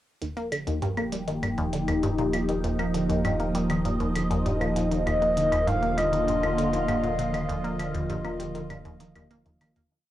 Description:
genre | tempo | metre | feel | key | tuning
ambient, sequencer-driven space music | 99 BPM | 4/4 | straight | Eb major | A4 = 439 Hz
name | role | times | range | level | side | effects
phased analog pad | sustained chords | 0.2-9.9 s | D3 to F5 | -28 LUFS | equal | phaser, chorus, cassette tape
resonant blip pluck | riff | 0.2-9.8 s | Eb2 to Bb3 | -30 LUFS | equal | phaser, cassette tape, tape echo
round analog bass | bass | 0.2-9.9 s | Eb1 | -34 LUFS | equal | none
electronic hi-hat and claves | percussion | 0.2-9.9 s | none | -36 LUFS | equal | cassette tape, tape echo
breathy flute-like synth lead | melody | 5.1-9.3 s | Eb5 to F5 | -27 LUFS | left 1 dB | chorus, tape echo
room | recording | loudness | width
wet studio reverb, RT60 0.5 s | home recording on cassette | -24 LUFS | side -13 dB against mid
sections
0.2-9.9 A section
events
fade-out 6.7-9.9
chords
0.2 Ebadd9

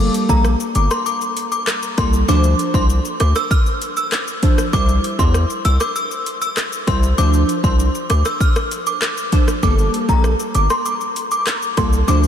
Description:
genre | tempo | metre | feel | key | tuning
dancehall | 98 BPM | 4/4 | straight | unclear | A4 = 440 Hz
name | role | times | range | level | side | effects
glassy wavetable pluck | accompaniment | 0.0-12.3 s | F3 to C5 | -23 LUFS | equal | chorus
hard-hitting 808-style bass | bass | 0.0-12.3 s | G1 to E2 | -16 LUFS | equal | none
deep house drum kit | drums | 0.1-12.3 s | handclaps, hi-hat, kick drum, rim click, shaker | -20 LUFS | equal | overdrive
synth chime | melody | 0.3-12.2 s | Bb5 to F6 | -21 LUFS | equal | ensemble chorus, phaser, tremolo, diffuse ambient delay
room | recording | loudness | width
moderate huge ambient reverb, RT60 8.0 s | dreamy mix soaked in reverb | -15 LUFS | side -9 dB against mid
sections
0.0-12.3 A section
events
none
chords
0.0 Gmadd9; 2.3 Dm7; 4.7 C; 7.2 Dm7; 9.6 Gmadd9

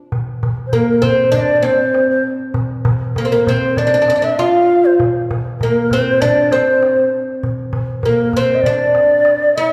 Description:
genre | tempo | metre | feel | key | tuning
Arabic maqam ensemble | 99 BPM | 4/4 | straight | unclear | A4 = 440 Hz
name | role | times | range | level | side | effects
darbuka | percussion | 0.1-9.7 s | none | -23 LUFS | equal | none
oud | melody | 0.7-9.7 s | Bb3 to F4 | -18 LUFS | equal | none
breathy bright low ney | second line | 0.7-9.7 s | Bb4 to F5 | -18 LUFS | equal | none
room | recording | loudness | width
wet recital hall reverb, RT60 1.7 s | recorded in a church or concert hall | -15 LUFS | mono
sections
0.1-9.7 A section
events
none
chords
none

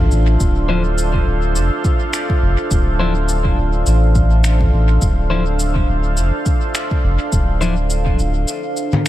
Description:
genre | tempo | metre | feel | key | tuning
ambient dub | 104 BPM | 4/4 | swing 56% on 16ths | D minor | A4 = 440 Hz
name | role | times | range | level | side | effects
deep dark ambient pad | sustained chords | 0.0-9.1 s | D4 to F5 | -22 LUFS | equal | chorus, built-in reverb
soft dub sub bass | bass | 0.0-8.4 s | D1 to A1 | -16 LUFS | equal | tube saturation
drifting glass-harmonics texture | texture | 0.0-9.1 s | F4 | -30 LUFS | right 4 dB | chorus, built-in reverb
electronic cabasa, finger snaps and congas | drums | 0.1-9.1 s | none | -24 LUFS | left 2 dB | dub echo
electronic kick drum | drums | 0.4-8.2 s | none | -18 LUFS | equal | none
clean electric guitar | stabs | 0.7-7.7 s | F3 to C5 | -26 LUFS | left 4 dB | dub echo
room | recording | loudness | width
digital ambience | none | -14 LUFS | side -14 dB against mid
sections
0.0-9.1 A section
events
none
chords
0.0 Dm9

